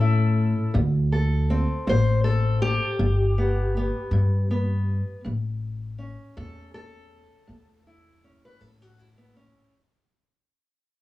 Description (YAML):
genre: acoustic country blues, solo or duo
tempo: 53 BPM (dotted quarters)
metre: 12/8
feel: straight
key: unclear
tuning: A4 = 440 Hz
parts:
  - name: fingerpicked steel-string acoustic guitar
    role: melody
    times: 0.0-9.7 s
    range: D2 to C5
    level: -28 LUFS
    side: left 1 dB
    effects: plate reverb
  - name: upright bass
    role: bass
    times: 0.0-9.5 s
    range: G1 to A2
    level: -22 LUFS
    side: left 1 dB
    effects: none
room: wet small room reverb, RT60 0.6 s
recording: heard from further back in the room, small room ambience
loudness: -21 LUFS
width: side -16 dB against mid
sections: 0.0-9.7 A section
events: fade-out 0.0-9.7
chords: 0.0 A; 0.8 D5; 3.0 G; 5.2 A